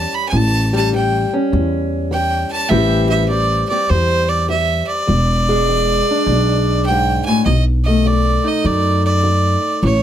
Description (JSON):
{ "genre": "acoustic country blues, solo or duo", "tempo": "101 BPM", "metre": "4/4", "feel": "swing 67% on 8ths", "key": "unclear", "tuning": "A4 = 440 Hz", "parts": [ { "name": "clear fiddle", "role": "melody", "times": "0.0-10.0 s", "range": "C5 to B5", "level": "-18 LUFS", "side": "right 2 dB", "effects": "none" }, { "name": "fingerpicked steel-string acoustic guitar", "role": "accompaniment", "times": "0.0-10.0 s", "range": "E2 to G4", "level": "-19 LUFS", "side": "left 2 dB", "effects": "none" }, { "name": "upright bass", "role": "bass", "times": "0.0-10.0 s", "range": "E1 to F#2", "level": "-17 LUFS", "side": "equal", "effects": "none" } ], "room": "little or no reverb", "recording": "close, detailed microphones", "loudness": "-14 LUFS", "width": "side -10 dB against mid", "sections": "0.0-10.0 A section", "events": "none", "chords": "0.0 A7; 2.7 Am7; 5.1 E7; 7.5 B7", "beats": "| 0.32 0.92 1.51 2.11 | 2.71 3.30 3.90 4.49 | 5.08 5.68 6.27 6.87 | 7.46 8.05 8.64 9.24 | 9.83" }